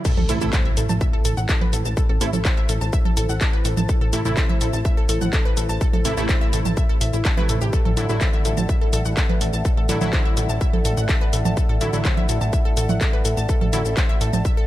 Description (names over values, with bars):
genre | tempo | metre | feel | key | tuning
melodic techno | 125 BPM | 4/4 | straight | A dorian | A4 = 443 Hz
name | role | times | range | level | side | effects
dark analog pad | sustained chords | 0.0-14.7 s | A3 to F#5 | -32 LUFS | left 1 dB | chorus, sidechain pumping
synth brass stab | stabs | 0.0-13.8 s | C3 to E4 | -30 LUFS | right 1 dB | chorus, sidechain pumping, ping-pong delay
noise sweep and impact | sound effects | 0.0-2.0 s | none | -32 LUFS | equal | none
wide unison pluck | arpeggios | 0.1-14.7 s | E4 to A5 | -28 LUFS | equal | sidechain pumping, ping-pong delay
electronic kick drum | drums | 0.1-14.5 s | none | -20 LUFS | equal | distortion
techno drum kit | drums | 0.1-14.5 s | congas, crash cymbal, handclaps, hi-hat, shaker | -26 LUFS | right 2 dB | none
plucky analog bass | bass | 0.2-14.4 s | A1 | -24 LUFS | equal | tube saturation, sidechain pumping
room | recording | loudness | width
little or no reverb | none | -18 LUFS | side -14 dB against mid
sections
0.1-14.7 A section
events
drop 0.1-14.7; impact 0.1-2.0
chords
0.1 Am; 7.7 Dadd9/A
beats
| 0.05 0.53 1.01 1.49 | 1.97 2.45 2.93 3.41 | 3.89 4.37 4.85 5.33 | 5.81 6.29 6.77 7.25 | 7.73 8.21 8.69 9.17 | 9.65 10.13 10.61 11.09 | 11.57 12.05 12.53 13.01 | 13.49 13.97 14.45